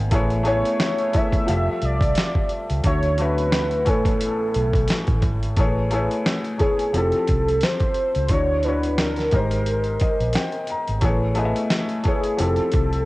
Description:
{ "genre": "lo-fi hip hop", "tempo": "88 BPM", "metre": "4/4", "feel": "swing 56% on 16ths", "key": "A major", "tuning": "A4 = 443 Hz", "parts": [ { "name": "felt-muted upright piano", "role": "accompaniment", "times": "0.0-13.1 s", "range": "A2 to A#5", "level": "-25 LUFS", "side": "left 2 dB", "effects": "cassette tape" }, { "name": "warm French horn section", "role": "sustained chords", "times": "0.0-5.6 s", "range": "C3 to E5", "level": "-34 LUFS", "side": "right 1 dB", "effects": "stereo widening, cassette tape" }, { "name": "vintage muted fingered electric bass", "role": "bass", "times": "0.0-13.1 s", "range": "F1 to D2", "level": "-24 LUFS", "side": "equal", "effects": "none" }, { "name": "dusty soul sampler-style drum kit", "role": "drums", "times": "0.1-13.1 s", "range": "hi-hat, kick drum, snare drum", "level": "-23 LUFS", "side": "equal", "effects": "overdrive, cassette tape" }, { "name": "warm velvety synth lead", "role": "melody", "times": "0.5-13.1 s", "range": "G#4 to E5", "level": "-24 LUFS", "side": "equal", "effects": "chorus, cassette tape" } ], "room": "light reverb, digital ambience", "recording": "home recording on cassette", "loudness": "-19 LUFS", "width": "side -19 dB against mid", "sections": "0.0-5.6 A section; 5.6-13.1 B section", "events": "none", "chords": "0.1 Amaj9; 1.5 Fmaj9; 2.8 Dmaj9; 3.9 Amaj9; 6.9 Fmaj9; 8.3 Dmaj9; 9.3 G#maj9; 11.0 Amaj9; 12.4 Fmaj9", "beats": "| 0.12 0.80 1.48 2.16 | 2.84 3.52 4.21 4.89 | 5.57 6.25 6.93 7.62 | 8.30 8.98 9.66 10.34 | 11.02 11.71 12.39" }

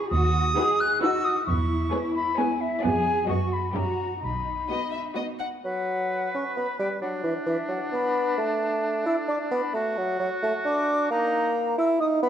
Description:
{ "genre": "cinematic, playful, whimsical film cue", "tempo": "132 BPM", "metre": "3/4", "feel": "straight", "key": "B major, B minor from 5.6 s", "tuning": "A4 = 441 Hz", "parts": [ { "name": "silver concert flute", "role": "second line", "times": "0.0-12.3 s", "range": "E5 to F#6", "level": "-28 LUFS", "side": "left 2 dB", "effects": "none" }, { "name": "muted studio cello section", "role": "bass", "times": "0.0-5.4 s", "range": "D#4 to G#4", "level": "-31 LUFS", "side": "equal", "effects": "none" }, { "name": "muted studio double bass section", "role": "bass", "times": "0.1-4.6 s", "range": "B1 to F#2", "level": "-27 LUFS", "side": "right 2 dB", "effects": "none" }, { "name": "muted studio violin section", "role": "melody", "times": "0.6-5.5 s", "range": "B4 to F#5", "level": "-37 LUFS", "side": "left 4 dB", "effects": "none" }, { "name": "muted studio violin section", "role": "second line", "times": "0.6-5.5 s", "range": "F#4 to G#4", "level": "-35 LUFS", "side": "left 5 dB", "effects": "none" }, { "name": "muted studio viola section", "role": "accompaniment", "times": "0.6-5.5 s", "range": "B3 to D#4", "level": "-32 LUFS", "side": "right 3 dB", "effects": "none" }, { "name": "mellow bassoon", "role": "accompaniment", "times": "5.6-12.3 s", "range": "E3 to E4", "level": "-25 LUFS", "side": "right 1 dB", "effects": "none" }, { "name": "clear oboe", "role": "second line", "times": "5.7-11.5 s", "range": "D4 to B4", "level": "-32 LUFS", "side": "right 1 dB", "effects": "none" } ], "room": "moderate scoring stage reverb, RT60 1.7 s", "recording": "dark, warm production", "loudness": "-23 LUFS", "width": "side -9 dB against mid", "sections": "0.0-5.6 A section; 5.6-12.3 B section", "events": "none", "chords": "0.1 B/D#; 1.5 C#m7/E; 2.8 Fdim7; 3.3 B/F#; 3.8 F#7b9; 4.2 B; 5.6 N.C.", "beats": "| 0.12 0.57 1.03 | 1.48 1.93 2.39 | 2.84 3.29 3.76 | 4.23 4.71 5.18 | 5.65 6.11 6.56 | 7.02 7.47 7.93 | 8.38 8.84 9.29 | 9.75 10.20 10.65 | 11.11 11.56 12.01" }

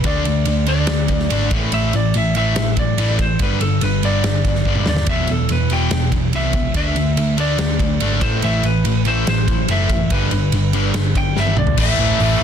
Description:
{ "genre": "hard rock", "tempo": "143 BPM", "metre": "4/4", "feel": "straight", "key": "unclear", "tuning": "A4 = 440 Hz", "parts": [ { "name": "lightly driven lead guitar", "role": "melody", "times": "0.0-12.4 s", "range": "A4 to G5", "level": "-23 LUFS", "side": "equal", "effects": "none" }, { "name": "distorted electric guitar", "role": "riff", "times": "0.0-12.4 s", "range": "E2 to D4", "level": "-23 LUFS", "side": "left 12 dB", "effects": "overdrive" }, { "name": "sludgy distorted guitar", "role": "riff", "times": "0.0-12.4 s", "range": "E2 to D4", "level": "-23 LUFS", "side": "right 12 dB", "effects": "overdrive" }, { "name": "hollow-body short-scale picked electric bass", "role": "bass", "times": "0.0-12.4 s", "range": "E1 to D#2", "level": "-20 LUFS", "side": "equal", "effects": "none" }, { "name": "big rock drum kit", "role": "drums", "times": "0.0-12.3 s", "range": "crash cymbal, hi-hat, kick drum, ride cymbal, snare drum, toms", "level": "-22 LUFS", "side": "equal", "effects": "none" }, { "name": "overdriven tonewheel organ", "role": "sustained chords", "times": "11.8-12.4 s", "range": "A3 to B4", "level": "-30 LUFS", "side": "left 2 dB", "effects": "none" }, { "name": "tight distorted guitar", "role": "riff", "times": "11.8-12.4 s", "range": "A2 to A3", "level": "-23 LUFS", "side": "left 1 dB", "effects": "distortion" } ], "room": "little or no reverb", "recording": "dense, heavily limited modern master", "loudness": "-15 LUFS", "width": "side -8 dB against mid", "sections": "0.0-11.8 A section", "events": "drum fill 4.7-5.1, 11.4-11.8", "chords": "0.0 D5; 1.5 A5; 3.4 G5; 5.1 Em; 6.8 D5; 8.2 Am; 10.1 G; 11.8 A5", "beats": "| 0.05 0.47 0.89 1.31 | 1.73 2.15 2.56 2.98 | 3.40 3.82 4.24 4.66 | 5.08 5.50 5.92 6.34 | 6.76 7.17 7.59 8.01 | 8.43 8.85 9.27 9.69 | 10.11 10.53 10.95 11.37 | 11.79 12.20" }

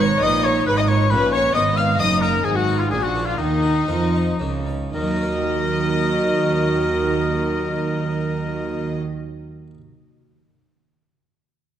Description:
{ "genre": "classical, baroque-style concerto movement with solo episodes", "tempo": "109-136 BPM", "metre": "3/4", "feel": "straight", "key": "Eb minor", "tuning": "A4 = 437 Hz", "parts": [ { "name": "warm chamber violin section", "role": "melody", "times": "0.0-9.0 s", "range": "Eb5 to F6", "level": "-29 LUFS", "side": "left 5 dB", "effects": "none" }, { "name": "warm oboe", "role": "melody", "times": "0.0-9.0 s", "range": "Eb4 to F5", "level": "-24 LUFS", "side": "left 3 dB", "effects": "none" }, { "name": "rich chamber violin section", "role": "second line", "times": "0.0-9.0 s", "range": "Eb4 to F5", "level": "-25 LUFS", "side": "left 3 dB", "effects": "none" }, { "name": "harpsichord", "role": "accompaniment", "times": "0.0-9.8 s", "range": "Gb2 to Bb4", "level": "-31 LUFS", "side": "equal", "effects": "none" }, { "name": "warm chamber viola section", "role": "accompaniment", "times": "0.0-9.0 s", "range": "Gb3 to D#4", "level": "-26 LUFS", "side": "right 2 dB", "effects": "none" }, { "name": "rich chamber double bass section", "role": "bass", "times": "0.0-9.0 s", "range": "Gb1 to F2", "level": "-25 LUFS", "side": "right 3 dB", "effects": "none" }, { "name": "warm chamber cello section", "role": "bass", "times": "0.0-9.0 s", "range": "Gb2 to F3", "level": "-25 LUFS", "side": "right 3 dB", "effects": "none" } ], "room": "moderate concert hall reverb, RT60 2.0 s", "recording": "none", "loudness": "-18 LUFS", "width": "side -10 dB against mid", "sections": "0.0-4.9 A section; 4.9-8.2 B section", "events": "slowing down 1.3-4.9", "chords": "0.0 B; 0.7 Fdim/Ab; 2.0 Ebm/Gb; 2.4 Abm; 2.9 Bb; 3.4 Ebm", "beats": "0.23 | 0.67 1.11 1.55 | 1.99 2.44 2.91 | 3.38 3.88 4.39 | 4.93 5.48 6.02 | 6.57 7.12 7.66" }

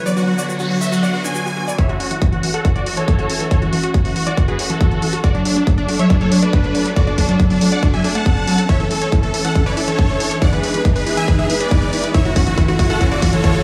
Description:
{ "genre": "uplifting trance", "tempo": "139 BPM", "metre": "4/4", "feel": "straight", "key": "F# minor", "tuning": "A4 = 436 Hz", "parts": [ { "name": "muted symphonic string section", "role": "sustained chords", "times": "0.0-13.6 s", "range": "D3 to A4", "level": "-26 LUFS", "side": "equal", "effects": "sidechain pumping" }, { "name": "supersaw chords", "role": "melody", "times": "0.1-13.6 s", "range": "D4 to A5", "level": "-24 LUFS", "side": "equal", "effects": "sidechain pumping, low-pass filter, tape echo" }, { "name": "unison pluck", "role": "arpeggios", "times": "0.1-13.6 s", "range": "E3 to D5", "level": "-23 LUFS", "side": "equal", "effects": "cassette tape, sidechain pumping, tape echo" }, { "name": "egg shaker", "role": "percussion", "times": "0.1-1.8 s", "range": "none", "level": "-32 LUFS", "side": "equal", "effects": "none" }, { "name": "noise sweep and riser", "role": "sound effects", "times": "0.3-13.6 s", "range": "none", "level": "-32 LUFS", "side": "equal", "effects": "none" }, { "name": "electronic hi-hat", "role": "drums", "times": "1.8-13.6 s", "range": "none", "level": "-29 LUFS", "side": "equal", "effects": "none" }, { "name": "electronic kick drum", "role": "drums", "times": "1.8-13.5 s", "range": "none", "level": "-19 LUFS", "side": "equal", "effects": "none" } ], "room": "light reverb", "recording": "small room ambience", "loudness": "-17 LUFS", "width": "mono", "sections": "0.0-1.8 A section; 1.8-13.6 B section", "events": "noise sweep 0.3-1.8; build-up 1.8-13.6; riser 1.8-13.6; drum fill 8.7-13.6", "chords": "0.1 Bm; 1.8 F#m7; 5.2 D; 8.7 A; 10.4 E; 12.1 F#m7", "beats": "| 0.06 0.49 0.92 1.35 | 1.78 2.22 2.65 3.08 | 3.51 3.94 4.38 4.81 | 5.24 5.67 6.10 6.53 | 6.96 7.40 7.83 8.26 | 8.69 9.12 9.55 9.99 | 10.42 10.85 11.28 11.71 | 12.14 12.58 13.01 13.44" }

